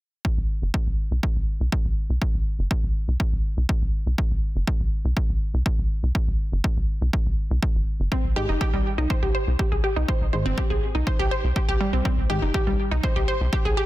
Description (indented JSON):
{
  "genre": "melodic techno",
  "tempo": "122 BPM",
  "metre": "4/4",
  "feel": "straight",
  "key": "C minor",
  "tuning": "A4 = 440 Hz",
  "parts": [
    { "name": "electronic kick drum", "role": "drums", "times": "0.2-13.6 s", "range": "none", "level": "-24 LUFS", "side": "equal", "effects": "none" },
    { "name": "tight sequencer bass", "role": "bass", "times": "0.4-13.7 s", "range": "G1 to C2", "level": "-24 LUFS", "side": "equal", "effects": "sidechain pumping" },
    { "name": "wide unison pluck", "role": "arpeggios", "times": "8.1-13.8 s", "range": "G3 to C5", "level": "-26 LUFS", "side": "equal", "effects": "sidechain pumping, dub echo" },
    { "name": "filtered dub chord stab", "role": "stabs", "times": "8.4-12.4 s", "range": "Ab2 to Ab3", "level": "-31 LUFS", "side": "left 1 dB", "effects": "wide subtle chorus, sidechain pumping, dub echo" }
  ],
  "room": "little or no reverb",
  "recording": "dense, heavily limited modern master",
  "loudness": "-21 LUFS",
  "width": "side -17 dB against mid",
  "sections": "0.2-13.9 A section",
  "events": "filter sweep on analog synth bass 0.2-13.9",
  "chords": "0.2 C5; 8.1 Ab"
}